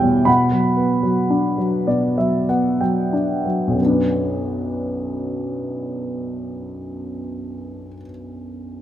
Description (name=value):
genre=classical, lyrical solo piano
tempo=45-64 BPM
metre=3/4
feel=rubato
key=B minor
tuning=A4 = 441 Hz
part: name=dark baby grand piano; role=solo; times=0.0-8.8 s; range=B1 to B5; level=-18 LUFS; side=equal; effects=none
room=light reverb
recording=close, detailed microphones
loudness=-18 LUFS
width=side -11 dB against mid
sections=0.0-3.8 A section; 3.8-7.6 B section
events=slowing down 0.0-3.8; grand piano fill 1.3-3.8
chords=0.3 Bm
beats=| 0.27 1.30 2.49 | 3.80 5.09 6.32